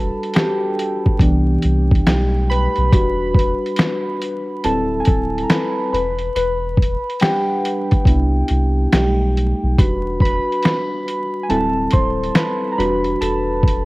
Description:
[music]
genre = lo-fi hip hop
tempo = 70 BPM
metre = 4/4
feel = swing 64% on 16ths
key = E minor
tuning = A4 = 440 Hz
[part]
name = muted felt-like synth keys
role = accompaniment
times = 0.0-13.8 s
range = E3 to C6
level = -19 LUFS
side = equal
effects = chorus, cassette tape, low-pass filter
[part]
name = soft dub sub bass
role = bass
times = 0.0-13.8 s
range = D1 to C2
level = -20 LUFS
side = equal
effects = none
[part]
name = dusty soul sampler-style drum kit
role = drums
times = 0.2-13.8 s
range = finger snaps, hi-hat, kick drum, snare drum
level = -16 LUFS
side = equal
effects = overdrive
[sound]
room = light reverb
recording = worn, warbling old tape, cassette tape, vinyl crackle, warbly pitch drift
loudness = -15 LUFS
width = side -20 dB against mid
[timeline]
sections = 0.0-13.8 A section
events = synth keys solo 0.0-13.8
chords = 0.0 Em9 (rootless); 1.2 Cmaj9; 2.1 Baug7; 2.9 Em9; 4.6 D9sus4; 5.9 Em9; 8.1 Cmaj9; 8.9 Baug7; 9.8 Em9; 11.5 D9sus4; 12.8 Em9

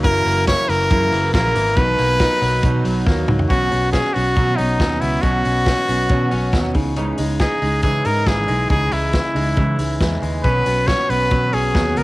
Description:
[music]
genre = jangly indie pop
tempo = 138 BPM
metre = 4/4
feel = straight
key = B major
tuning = A4 = 441 Hz
[part]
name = bright trumpet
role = melody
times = 0.0-12.0 s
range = D#4 to C#5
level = -19 LUFS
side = equal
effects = cassette tape, plate reverb
[part]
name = fingerpicked steel-string acoustic guitar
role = accompaniment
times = 0.0-12.0 s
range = F#2 to E4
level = -24 LUFS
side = right 3 dB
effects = cassette tape, plate reverb
[part]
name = direct-recorded clean electric guitar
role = arpeggios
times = 0.0-12.0 s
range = F#2 to E4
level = -27 LUFS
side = left 3 dB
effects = cassette tape, plate reverb
[part]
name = vintage muted fingered electric bass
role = bass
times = 0.0-12.0 s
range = F#1 to C#3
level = -22 LUFS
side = equal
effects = none
[part]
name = vintage drum kit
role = drums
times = 0.0-12.0 s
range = hi-hat, kick drum, ride cymbal, snare drum, toms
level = -22 LUFS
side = equal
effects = cassette tape
[sound]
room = light reverb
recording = home recording on cassette, vinyl crackle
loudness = -15 LUFS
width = side -19 dB against mid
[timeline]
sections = 0.0-3.5 A section; 3.5-12.0 B section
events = drum fill 3.1-3.5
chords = 0.0 F#7; 1.8 Bmaj7; 3.5 Bsus2; 6.8 C#madd9; 10.4 Bsus2

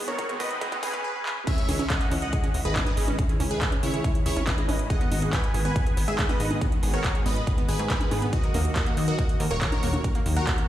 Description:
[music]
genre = uplifting trance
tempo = 140 BPM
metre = 4/4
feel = straight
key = C# dorian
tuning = A4 = 439 Hz
[part]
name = analog string pad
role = sustained chords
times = 0.0-10.7 s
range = D#3 to F#4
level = -34 LUFS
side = left 1 dB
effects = ensemble chorus, sidechain pumping
[part]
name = wide unison pluck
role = arpeggios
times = 0.0-10.5 s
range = A#3 to A#4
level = -35 LUFS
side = right 4 dB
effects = sidechain pumping, ping-pong delay
[part]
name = plucky analog bass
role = bass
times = 0.0-10.4 s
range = D#1 to G#2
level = -27 LUFS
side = equal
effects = sidechain pumping, high-pass filter
[part]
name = riser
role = sound effects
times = 0.0-1.0 s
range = none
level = -37 LUFS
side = equal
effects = none
[part]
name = supersaw stab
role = melody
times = 0.1-10.7 s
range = E4 to G#5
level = -31 LUFS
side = equal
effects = sidechain pumping, ping-pong delay
[part]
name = big-room dance drum kit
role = drums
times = 0.1-10.7 s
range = congas, crash cymbal, handclaps, hi-hat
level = -32 LUFS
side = equal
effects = high-pass filter on hats, high-pass filter on perc, high-pass filter on snare, high-pass filter on cymbals
[part]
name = electronic kick drum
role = drums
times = 0.2-10.6 s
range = none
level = -25 LUFS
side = equal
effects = none
[sound]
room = light reverb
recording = played on a big sound system in a bare room, large studio reverb, high-pass filter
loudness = -23 LUFS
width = side -12 dB against mid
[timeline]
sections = 0.0-1.5 A section; 1.5-10.7 B section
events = build-up 0.0-1.5; drum fill 0.0-1.0, 1.3; riser 0.0-1.0; drop 1.5-10.7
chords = 0.0 G#m7; 1.5 C#madd9; 4.9 G#m7; 8.3 D#m

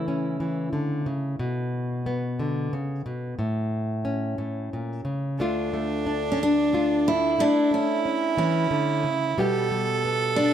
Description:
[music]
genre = acoustic folk duo or small band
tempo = 60 BPM (dotted quarters)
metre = 6/8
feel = straight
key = D harmonic minor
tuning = A4 = 440 Hz
[part]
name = picked steel-string acoustic guitar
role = melody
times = 0.0-1.0, 6.3-10.5 s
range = C#4 to E4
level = -24 LUFS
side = equal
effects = none
[part]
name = nylon-string guitar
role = accompaniment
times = 0.0-10.5 s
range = D2 to G4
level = -26 LUFS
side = left 1 dB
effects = none
[part]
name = clear fiddle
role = second line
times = 5.4-10.5 s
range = D4 to A4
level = -26 LUFS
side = right 6 dB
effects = none
[sound]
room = studio ambience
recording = dry, close 1970s-style studio recording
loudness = -23 LUFS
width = side -9 dB against mid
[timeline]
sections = 0.0-5.4 A section; 5.4-10.5 B section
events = none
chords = 0.0 A/C#; 1.4 Bmadd9; 3.4 A; 5.4 Dm; 7.4 A; 9.4 Gadd9/B

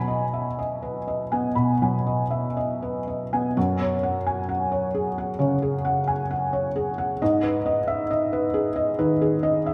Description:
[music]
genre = neoclassical minimalist piano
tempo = 58-69 BPM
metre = 4/4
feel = rubato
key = unclear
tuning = A4 = 440 Hz
[part]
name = felt-muted upright piano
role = solo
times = 0.0-9.7 s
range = F#2 to B5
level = -24 LUFS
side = equal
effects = none
[sound]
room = wet concert hall reverb, RT60 2.0 s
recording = none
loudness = -24 LUFS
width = mono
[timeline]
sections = 0.0-3.6 A section; 3.6-9.7 B section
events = none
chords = 0.0 B6; 3.6 F#sus2; 7.2 G#m

